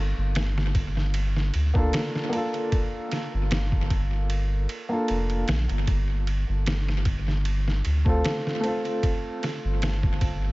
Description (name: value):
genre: trip hop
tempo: 76 BPM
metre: 4/4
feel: swing 54% on 16ths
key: G minor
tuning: A4 = 440 Hz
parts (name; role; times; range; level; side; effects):
- round analog bass; bass; 0.0-10.5 s; F1 to D2; -24 LUFS; equal; none
- trip hop sampler-style drum kit; drums; 0.4-10.4 s; kick drum, ride cymbal, snare drum; -28 LUFS; equal; small room ambience, tape echo
- felt-muted upright piano; accompaniment; 1.7-10.5 s; A3 to A4; -30 LUFS; equal; tremolo, tape echo
room: small room ambience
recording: echo-heavy mix, nothing above 7.8 kHz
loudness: -23 LUFS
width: side -21 dB against mid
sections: 0.0-10.5 A section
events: none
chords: 0.0 Gm7; 5.9 F/G